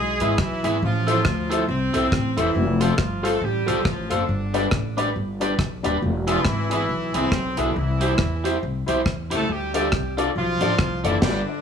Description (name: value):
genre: ska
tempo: 138 BPM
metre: 4/4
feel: swing 59% on 8ths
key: unclear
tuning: A4 = 440 Hz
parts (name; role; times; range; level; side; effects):
- mellow horn section; melody; 0.0-11.6 s; D3 to A4; -26 LUFS; right 1 dB; none
- upright bass; bass; 0.0-11.4 s; Eb1 to E2; -25 LUFS; left 1 dB; none
- electric guitar at the edge of break-up; accompaniment; 0.2-11.4 s; D4 to D5; -27 LUFS; right 2 dB; none
- warm upright piano; stabs; 0.2-11.4 s; D4 to F5; -28 LUFS; left 5 dB; tape echo
- deep reggae drum kit; drums; 0.2-11.4 s; crash cymbal, hi-hat, kick drum, rim click, snare drum; -24 LUFS; equal; none
room: light reverb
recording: small room ambience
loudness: -20 LUFS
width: side -7 dB against mid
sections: 0.0-11.6 A section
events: band accent 11.2-11.6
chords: 0.0 E; 0.8 Am; 2.6 F; 4.3 G; 6.0 E; 7.8 C; 9.5 Dm